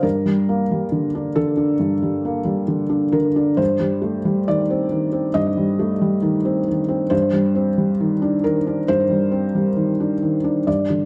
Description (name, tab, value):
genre	neoclassical minimalist piano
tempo	68 BPM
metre	4/4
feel	rubato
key	unclear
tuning	A4 = 441 Hz
part	felt-muted upright piano	solo	0.0-11.1 s	G2 to Eb5	-20 LUFS	equal	slapback echo
room	moderate small room reverb, RT60 0.5 s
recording	dark, warm production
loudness	-20 LUFS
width	mono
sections	0.0-11.1 A section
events	none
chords	0.0 Gm; 3.6 Adim/G; 7.1 Cmadd9/G